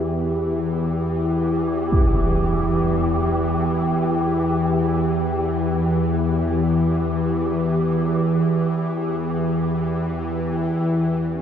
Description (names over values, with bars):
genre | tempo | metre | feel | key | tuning
dark ambient drone | free time | none | none | E minor | A4 = 440 Hz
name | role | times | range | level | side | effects
bowed-like drone | drone | 0.0-11.4 s | E2 to E3 | -20 LUFS | left 1 dB | built-in reverb
wind-like tuned noise texture | texture | 0.0-11.3 s | G4 | -26 LUFS | right 1 dB | built-in reverb
impact | percussion | 1.9-2.1 s | none | -22 LUFS | equal | low-pass filter on sfx
mellow duduk | melody | 11.3-11.4 s | C#4 | -34 LUFS | equal | none
dark analog pad | sustained chords | 11.3-11.4 s | none | barely audible | none | none
room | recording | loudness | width
wet huge ambient reverb, RT60 7.1 s | dark, warm production | -19 LUFS | side -8 dB against mid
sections
0.0-11.3 A section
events
none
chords
0.0 Em